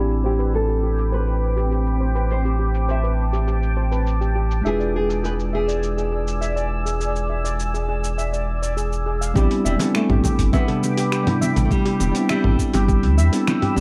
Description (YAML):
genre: sunset chillout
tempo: 102 BPM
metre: 4/4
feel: straight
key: A minor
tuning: A4 = 441 Hz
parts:
  - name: nylon-string guitar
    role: melody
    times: 0.0-13.7 s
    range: G3 to E5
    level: -29 LUFS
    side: equal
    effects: tape echo
  - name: bell-like tine electric piano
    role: accompaniment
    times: 0.0-13.8 s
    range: C3 to B5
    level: -28 LUFS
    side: equal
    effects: vintage 12-bit sampler grit, low-pass filter
  - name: shimmering ambient pad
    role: sustained chords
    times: 0.0-13.8 s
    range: C4 to E6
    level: -32 LUFS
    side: equal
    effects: chorus, built-in reverb, phaser
  - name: steel pan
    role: arpeggios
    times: 0.0-13.8 s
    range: G4 to F5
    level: -32 LUFS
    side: equal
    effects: low-pass filter, tape echo
  - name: warm sub bass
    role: bass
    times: 0.0-13.8 s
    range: E1 to E2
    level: -24 LUFS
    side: equal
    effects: none
  - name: dusty soul sampler-style drum kit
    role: drums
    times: 0.1-13.8 s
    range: cabasa, finger snaps, hi-hat, toms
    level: -31 LUFS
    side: equal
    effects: overdrive, low-pass filter on perc, low-pass filter on hats, low-pass filter on snare, low-pass filter on toms
  - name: electronic kick drum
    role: drums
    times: 9.4-13.0 s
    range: none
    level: -24 LUFS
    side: equal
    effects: none
  - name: congas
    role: percussion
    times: 9.4-13.8 s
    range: none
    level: -30 LUFS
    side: equal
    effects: none
room: light reverb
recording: low-pass filter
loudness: -21 LUFS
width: mono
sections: 0.0-9.4 A section; 9.4-13.8 B section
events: filter sweep on drum 0.0-9.4; filter sweep on tine electric piano 0.0-9.4; filter sweep on steel pan 0.0-9.4; filter sweep 0.0-9.4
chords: 0.0 Am11; 4.7 E7b9; 9.4 Am11